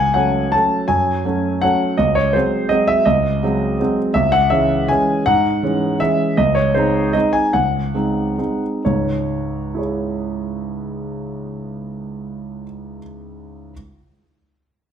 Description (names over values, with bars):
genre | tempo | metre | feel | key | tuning
classical, piano waltz | 120-174 BPM | 3/4 | rubato | C# minor | A4 = 439 Hz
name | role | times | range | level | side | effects
clear concert grand piano | solo | 0.0-13.7 s | C#2 to A5 | -16 LUFS | equal | none
room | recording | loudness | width
wet large studio reverb, RT60 1.3 s | none | -15 LUFS | side -8 dB against mid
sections
0.0-8.9 A section; 8.9-11.5 B section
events
slowing down 5.8-8.9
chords
0.0 F#m/C#; 2.0 G#7/C#; 4.2 C#m; 6.4 G#7/C#; 8.9 C#m